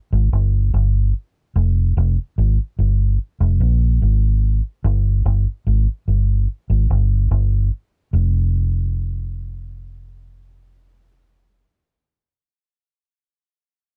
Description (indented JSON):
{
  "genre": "reggae",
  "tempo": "73 BPM",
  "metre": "4/4",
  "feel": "straight",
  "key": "F minor",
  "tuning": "A4 = 439 Hz",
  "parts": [
    { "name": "vintage muted fingered electric bass", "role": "bass", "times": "0.1-11.6 s", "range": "F1 to Bb1", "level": "-18 LUFS", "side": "equal", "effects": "none" }
  ],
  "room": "little or no reverb",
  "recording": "none",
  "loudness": "-19 LUFS",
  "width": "mono",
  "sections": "0.0-8.1 A section; 8.1-11.4 B section",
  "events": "none",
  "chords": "none"
}